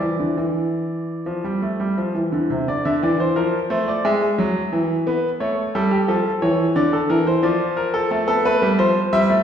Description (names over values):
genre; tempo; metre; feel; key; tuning
classical, baroque-style two-part invention for grand piano; 84-90 BPM; 4/4; straight; D minor; A4 = 440 Hz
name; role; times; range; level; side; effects
clear grand piano; solo; 0.0-9.4 s; C3 to E5; -18 LUFS; equal; none
room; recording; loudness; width
wet recital hall reverb, RT60 1.6 s; recorded in a church or concert hall; -18 LUFS; side -8 dB against mid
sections
0.0-2.7 A section; 2.7-9.4 B section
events
none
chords
0.0 Dm; 4.1 E; 5.4 A7; 6.8 Dm; 8.1 Am